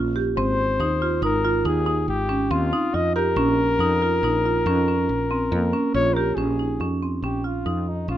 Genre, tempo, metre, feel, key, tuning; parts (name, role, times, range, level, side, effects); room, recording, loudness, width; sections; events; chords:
contemporary instrumental, chamber music in an uneven meter; 140 BPM; 7/4; straight; Bb dorian; A4 = 440 Hz
marimba with medium hard mallets; arpeggios; 0.0-8.2 s; Bb3 to G4; -23 LUFS; right 3 dB
woody fretless electric bass; bass; 0.0-8.2 s; Ab1 to F2; -26 LUFS; equal
breathy flugelhorn; melody; 0.4-8.2 s; Eb4 to Eb5; -24 LUFS; left 3 dB
light reverb; close, detailed microphones; -20 LUFS; side -12 dB against mid
0.0-6.4 A section; 6.4-8.2 B section
0.4 Ab; 3.4 Bbm; 6.4 Bbm7